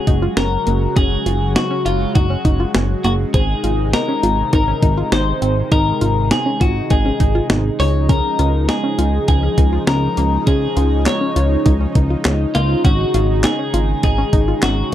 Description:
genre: synth-pop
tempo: 101 BPM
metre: 4/4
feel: straight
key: Db major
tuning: A4 = 439 Hz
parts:
  - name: twelve-string electric guitar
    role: melody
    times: 0.0-14.9 s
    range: F4 to Db5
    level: -21 LUFS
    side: left 3 dB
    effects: none
  - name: lush unison pad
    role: sustained chords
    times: 0.0-14.9 s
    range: C3 to Gb4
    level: -23 LUFS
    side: right 1 dB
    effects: chorus, phaser
  - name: wide unison pluck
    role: arpeggios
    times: 0.1-14.8 s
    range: Bb3 to F4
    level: -24 LUFS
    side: equal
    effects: tape echo
  - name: chorused synth bass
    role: bass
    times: 0.1-14.8 s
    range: Gb1 to Db2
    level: -18 LUFS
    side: equal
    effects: none
  - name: clean 12-bit digital drum machine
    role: drums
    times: 0.1-14.8 s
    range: handclaps, hi-hat, kick drum, snare drum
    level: -17 LUFS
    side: equal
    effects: none
room: light reverb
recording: dark, warm production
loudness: -14 LUFS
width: side -12 dB against mid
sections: 0.0-14.9 A section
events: none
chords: 0.0 Gbsus2; 3.3 Ab; 7.8 Dbadd9; 12.8 Absus4

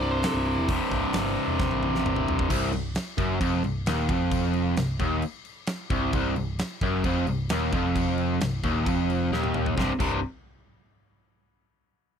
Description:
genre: blues rock power trio and southern rock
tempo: 132 BPM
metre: 4/4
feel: straight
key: unclear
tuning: A4 = 441 Hz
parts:
  - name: dark smooth lead guitar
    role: second line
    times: 0.0-0.7 s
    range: E4 to D5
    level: -32 LUFS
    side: right 3 dB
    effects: overdrive
  - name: overdriven electric guitar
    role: riff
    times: 0.0-10.2 s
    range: C2 to C3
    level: -25 LUFS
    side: equal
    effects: none
  - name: overdriven picked electric bass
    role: bass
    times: 0.0-10.2 s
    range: C1 to A1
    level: -30 LUFS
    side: equal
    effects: none
  - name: huge arena drum kit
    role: drums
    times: 0.2-10.1 s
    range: crash cymbal, hi-hat, kick drum, snare drum, toms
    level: -31 LUFS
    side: equal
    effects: none
room: little or no reverb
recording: dry, close 1970s-style studio recording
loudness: -24 LUFS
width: side -7 dB against mid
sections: 0.0-2.5 A section; 2.5-9.8 B section; 9.8-11.6 C section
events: lead electric guitar solo 0.0-2.5; drum fill 1.6-2.5, 9.3-9.8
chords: 0.0 C; 2.5 Cmadd11; 9.8 C5

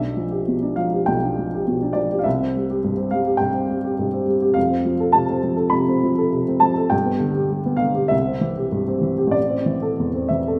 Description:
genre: classical, romantic character piece for solo piano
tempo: 101 BPM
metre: 4/4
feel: uneven beats, rubato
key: C major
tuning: A4 = 442 Hz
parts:
  - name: warm upright piano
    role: solo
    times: 0.0-10.6 s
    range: A1 to B5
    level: -21 LUFS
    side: equal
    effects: none
room: wet recital hall reverb, RT60 1.5 s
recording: none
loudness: -21 LUFS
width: mono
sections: 0.0-10.6 A section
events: none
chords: 0.0 G7/B; 2.3 C; 4.6 F; 6.9 G; 8.1 C; 9.4 Am

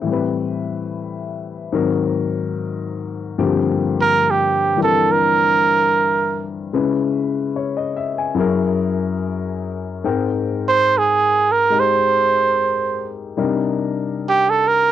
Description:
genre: jazz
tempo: 72 BPM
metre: 4/4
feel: swing 68% on 8ths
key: unclear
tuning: A4 = 440 Hz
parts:
  - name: warm grand piano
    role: accompaniment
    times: 0.0-14.9 s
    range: Gb2 to Ab5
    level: -20 LUFS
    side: left 6 dB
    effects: cassette tape
  - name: warm trumpet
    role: melody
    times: 4.0-14.9 s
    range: G4 to C5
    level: -14 LUFS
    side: right 4 dB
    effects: cassette tape
room: light reverb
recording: home recording on cassette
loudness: -16 LUFS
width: side -11 dB against mid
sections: 0.0-14.9 A section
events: trumpet solo 0.0-14.9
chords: 0.1 Am7; 1.7 Ab9; 3.4 Gm7; 6.7 Dbm7; 8.4 Gb9; 10.0 Abmaj7; 13.4 Cm7

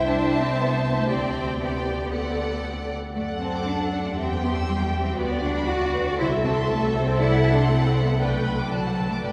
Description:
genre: quick classical-period movement for string orchestra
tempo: 118 BPM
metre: 4/4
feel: straight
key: unclear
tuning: A4 = 438 Hz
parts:
  - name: rich studio violin section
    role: melody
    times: 0.0-9.3 s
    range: D5 to A5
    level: -35 LUFS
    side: equal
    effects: none
  - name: warm studio violin section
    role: second line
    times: 0.0-9.3 s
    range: B4 to E6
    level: -33 LUFS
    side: equal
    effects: none
  - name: rich studio viola section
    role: accompaniment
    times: 0.0-9.3 s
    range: F#4 to C5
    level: -32 LUFS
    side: equal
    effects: none
  - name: rich studio cello section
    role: bass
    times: 0.0-9.3 s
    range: F#3 to F#4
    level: -29 LUFS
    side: equal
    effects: none
  - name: rich studio double bass section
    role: bass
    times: 0.0-9.3 s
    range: G1 to F#2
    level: -28 LUFS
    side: equal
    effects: none
room: wet cathedral reverb, RT60 4.9 s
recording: heard from further back in the room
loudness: -24 LUFS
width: mono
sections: 0.0-9.3 A section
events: none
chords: 0.1 Am/C; 1.1 G/D; 2.1 D; 3.2 D/F#; 4.2 C/E; 5.2 Bm/D; 6.2 Am/C; 7.2 D7/C; 8.2 G/B; 8.7 D

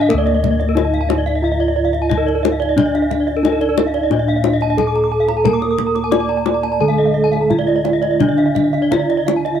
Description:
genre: Balinese gamelan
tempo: 89 BPM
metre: 4/4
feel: uneven beats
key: D pelog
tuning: A4 = 440 Hz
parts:
  - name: gamelan-type bronze metallophone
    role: melody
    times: 0.0-9.6 s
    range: Bb3-40c to D5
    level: -18 LUFS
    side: right 1 dB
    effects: cassette tape, analog delay
  - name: gamelan-type bronze metallophone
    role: accompaniment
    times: 0.0-0.1, 5.4-9.6 s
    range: D3 to Bb3-40c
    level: -25 LUFS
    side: right 8 dB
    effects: cassette tape
  - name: gamelan-type bronze metallophone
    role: arpeggios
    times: 0.0-9.5 s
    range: Bb4-40c to Eb6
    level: -22 LUFS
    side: right 10 dB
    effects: cassette tape
  - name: gamelan-type bossed gongs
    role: bass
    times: 0.0-9.6 s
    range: D2 to Bb4-40c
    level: -21 LUFS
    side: equal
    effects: none
  - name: gamelan-type bronze metallophone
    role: arpeggios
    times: 0.1-9.6 s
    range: Bb4-40c to Eb6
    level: -23 LUFS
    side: left 9 dB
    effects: cassette tape
  - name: kendang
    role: percussion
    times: 0.1-9.5 s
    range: none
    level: -21 LUFS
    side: left 10 dB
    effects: none
room: light reverb, small room reverb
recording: home recording on cassette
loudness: -14 LUFS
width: side -9 dB against mid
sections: 0.1-9.6 A section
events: none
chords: none

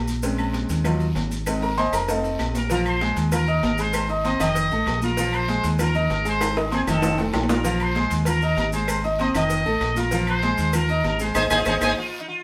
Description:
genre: latin, salsa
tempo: 194 BPM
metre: 4/4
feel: straight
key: unclear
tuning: A4 = 445 Hz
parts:
  - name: deep dub fingered electric bass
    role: bass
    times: 0.0-11.9 s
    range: F1 to Eb2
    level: -28 LUFS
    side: equal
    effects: none
  - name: congas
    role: percussion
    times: 0.1-11.9 s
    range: none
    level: -35 LUFS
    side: equal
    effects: none
  - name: guiro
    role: percussion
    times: 0.1-11.9 s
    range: none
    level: -42 LUFS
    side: equal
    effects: none
  - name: maracas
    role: percussion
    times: 0.1-11.9 s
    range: none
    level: -40 LUFS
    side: equal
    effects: none
  - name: bright upright piano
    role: accompaniment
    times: 0.2-11.9 s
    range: Eb3 to F6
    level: -27 LUFS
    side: equal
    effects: none
  - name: agogo bells and timbales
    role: percussion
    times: 0.2-11.9 s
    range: none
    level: -35 LUFS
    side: equal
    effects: none
  - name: cowbell and bongos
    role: percussion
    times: 0.2-11.9 s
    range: none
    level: -33 LUFS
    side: equal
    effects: none
  - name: claves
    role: percussion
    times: 0.4-11.9 s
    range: none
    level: -37 LUFS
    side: equal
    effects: none
  - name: bright trumpet section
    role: melody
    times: 2.6-11.9 s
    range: Ab4 to Eb6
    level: -28 LUFS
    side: equal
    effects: none
  - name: sitar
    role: second line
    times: 11.5-12.4 s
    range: Eb4 to Ab4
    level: -31 LUFS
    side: equal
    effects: none
room: wet studio reverb, RT60 0.6 s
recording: band playing live in one room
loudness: -22 LUFS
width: mono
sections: 0.0-2.7 A section; 2.7-12.4 B section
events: upright piano solo 0.0-2.7; drum fill 2.1-2.7, 6.4-7.6, 12.0-12.4; band accent 11.4-12.4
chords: 0.2 Bbm7; 0.9 Ebmadd9; 1.5 Ab; 2.1 F7; 2.7 Bb5; 3.3 Ebsus2; 3.9 Ab; 4.6 F7; 5.2 Bb5; 5.8 Ebsus2; 6.4 Ab; 7.0 F7; 7.6 Bb5; 8.3 Ebsus2; 8.9 Ab; 9.5 F7; 10.1 Bb5; 10.7 Ebsus2; 11.4 Ab

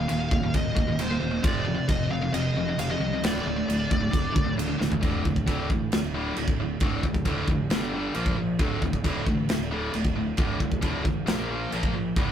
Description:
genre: heavy metal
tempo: 134 BPM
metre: 4/4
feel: straight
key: D phrygian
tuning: A4 = 436 Hz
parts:
  - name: high-gain lead guitar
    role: melody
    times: 0.0-4.5 s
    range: C5 to F5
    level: -32 LUFS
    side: left 1 dB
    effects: distortion, ping-pong delay
  - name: tight distorted guitar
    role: riff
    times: 0.0-12.3 s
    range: D2 to Bb3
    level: -28 LUFS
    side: equal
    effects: distortion
  - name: fuzz fingered electric bass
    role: bass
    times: 0.0-12.3 s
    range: D1 to C2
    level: -33 LUFS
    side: equal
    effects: overdrive
  - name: modern studio drum kit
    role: drums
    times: 0.1-12.3 s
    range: china cymbal, crash cymbal, kick drum, snare drum, toms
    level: -27 LUFS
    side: right 1 dB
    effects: none
room: light reverb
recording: rough rehearsal-room recording, tube saturation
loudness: -24 LUFS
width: side -9 dB against mid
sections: 0.0-5.0 A section; 5.0-12.3 B section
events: half time 0.0-5.0; drum fill 4.8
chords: 0.0 Eb5; 1.4 F5; 3.2 D5; 7.7 G5; 8.2 Bb5; 8.6 D5; 11.3 Bb5

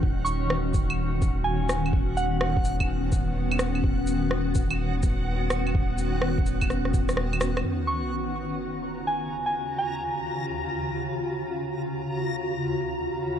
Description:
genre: future garage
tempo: 126 BPM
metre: 4/4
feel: swing 66% on 16ths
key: Eb minor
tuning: A4 = 439 Hz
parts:
  - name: granular cloud pad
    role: sustained chords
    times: 0.0-13.4 s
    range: Eb2 to F#4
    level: -29 LUFS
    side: left 1 dB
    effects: built-in reverb, sidechain pumping
  - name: warm sub bass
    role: bass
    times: 0.0-7.6 s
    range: D#1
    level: -28 LUFS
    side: equal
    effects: sidechain pumping
  - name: electronic kick drum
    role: drums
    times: 0.0-7.1 s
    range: none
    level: -25 LUFS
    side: equal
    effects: vintage 12-bit sampler grit, studio reverb
  - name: backwards swelling texture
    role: texture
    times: 0.0-13.4 s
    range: Gb5 to Bb5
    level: -38 LUFS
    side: equal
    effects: built-in reverb
  - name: soft synth bell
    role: melody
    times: 0.2-2.6, 7.9-10.2 s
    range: F#5 to C#6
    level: -32 LUFS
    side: right 2 dB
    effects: chorus, tape echo
  - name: electronic shaker, rim click and claves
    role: drums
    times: 0.3-13.4 s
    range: none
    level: -31 LUFS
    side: right 1 dB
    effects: overdrive, low-pass filter on perc, vintage 12-bit sampler grit, studio reverb, low-pass filter on snare
  - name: sub drop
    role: sound effects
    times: 7.6-9.6 s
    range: none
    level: -35 LUFS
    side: equal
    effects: none
room: light reverb, digital ambience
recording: none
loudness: -24 LUFS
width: side -9 dB against mid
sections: 0.0-7.7 A section; 7.7-13.4 B section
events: drum fill 6.7-7.7; impact 7.7-9.6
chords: 0.0 Badd9/D#; 7.7 Ebm9

